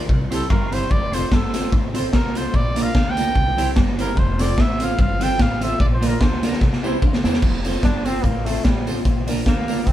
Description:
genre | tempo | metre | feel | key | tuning
ska | 147 BPM | 4/4 | swing 55% on 8ths | F major | A4 = 441 Hz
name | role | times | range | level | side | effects
clean electric guitar | accompaniment | 0.0-9.8 s | Bb3 to C5 | -28 LUFS | right 4 dB | dub echo
warm upright piano | stabs | 0.0-9.8 s | C4 to D5 | -30 LUFS | left 3 dB | none
upright bass | bass | 0.0-9.9 s | F1 to E2 | -26 LUFS | equal | none
electric guitar at the edge of break-up | riff | 0.1-9.9 s | F2 to E3 | -30 LUFS | left 2 dB | none
raw garage drum kit | drums | 0.1-9.9 s | crash cymbal, hi-hat, kick drum, rim click, snare drum | -19 LUFS | equal | none
warm trumpet | melody | 0.3-6.4 s | A4 to G5 | -25 LUFS | right 1 dB | none
tambourine | percussion | 0.3-9.8 s | none | -42 LUFS | right 3 dB | none
bright trombone | melody | 7.8-9.9 s | G3 to D4 | -27 LUFS | equal | none
room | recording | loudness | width
moderate stone room reverb, RT60 1.2 s | band playing live in one room | -17 LUFS | side -12 dB against mid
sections
0.0-7.4 A section; 7.4-9.9 A section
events
trumpet solo 0.0-7.4; drum fill 6.6-7.4; trombone solo 7.4-9.9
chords
0.1 C; 0.9 F; 2.5 Bb; 3.4 C; 4.2 F; 5.8 Bb; 6.6 C; 7.4 F; 9.1 Bb

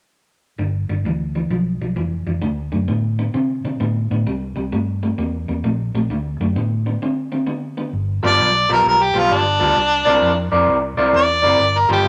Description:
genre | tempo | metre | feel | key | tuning
electric blues shuffle | 131 BPM | 4/4 | swing 66% on 8ths | G major, G mixolydian from 7.9 s | A4 = 442 Hz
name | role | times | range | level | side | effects
electric guitar through a small old amp | riff | 0.6-12.1 s | G2 to D5 | -22 LUFS | equal | spring reverb
vintage muted fingered electric bass | bass | 0.6-12.1 s | F1 to C3 | -25 LUFS | equal | none
clear harmonica | melody | 8.3-12.1 s | D4 to D5 | -18 LUFS | equal | overdrive
room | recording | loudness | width
moderate studio ambience, RT60 0.4 s | none | -19 LUFS | mono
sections
0.6-7.9 A section; 7.9-12.1 B section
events
break 7.0-7.9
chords
0.6 G7; 2.4 D7(no3); 4.3 C7; 6.1 D7(no3); 7.9 G9; 9.8 C9

